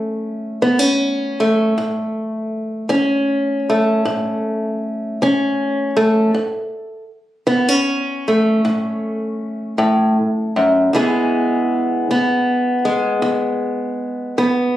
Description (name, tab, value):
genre	blues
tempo	52 BPM (dotted quarters)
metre	12/8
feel	straight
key	unclear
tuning	A4 = 440 Hz
part	fingerpicked old ladder-braced acoustic guitar	solo	0.0-14.8 s	E2 to G#4	-16 LUFS	equal	none
room	light reverb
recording	recorded on a phone in the room, studio reverb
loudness	-16 LUFS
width	side -13 dB against mid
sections	0.0-14.8 A section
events	none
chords	0.0 A; 10.9 E